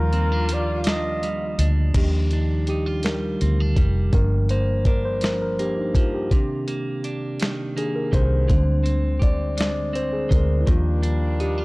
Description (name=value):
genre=slow six-eight R&B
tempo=55 BPM (dotted quarters)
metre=6/8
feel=straight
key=Eb major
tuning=A4 = 440 Hz
part: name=breathy flugelhorn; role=melody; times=0.0-1.7 s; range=Bb4 to Eb5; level=-28 LUFS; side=equal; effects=none
part: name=clean electric guitar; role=second line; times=0.0-11.6 s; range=G2 to G4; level=-30 LUFS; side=right 3 dB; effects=none
part: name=mellow tine electric piano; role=accompaniment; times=0.0-11.6 s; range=Eb3 to D5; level=-26 LUFS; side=left 1 dB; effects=none
part: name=clear horn section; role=stabs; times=0.0-1.5, 10.7-11.6 s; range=G3 to F4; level=-32 LUFS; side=left 1 dB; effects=none
part: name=vintage muted fingered electric bass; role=bass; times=0.0-11.6 s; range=F1 to Eb2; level=-22 LUFS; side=equal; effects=transformer saturation
part: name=dusty soul sampler-style drum kit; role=drums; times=0.1-11.6 s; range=crash cymbal, hi-hat, kick drum, snare drum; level=-21 LUFS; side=equal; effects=none
room=little or no reverb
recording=dry, gritty hardware recording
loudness=-19 LUFS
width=side -24 dB against mid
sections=0.0-1.9 A section; 1.9-11.6 B section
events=break 0.0-1.9; tine electric piano solo 1.9-11.6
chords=0.0 Ebmaj9; 4.1 Gm7; 6.3 Cm9; 8.5 Bb13/D; 10.7 Ebmaj9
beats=0.86 | 1.95 3.04 | 4.13 5.22 | 6.31 7.40 | 8.49 9.58 | 10.67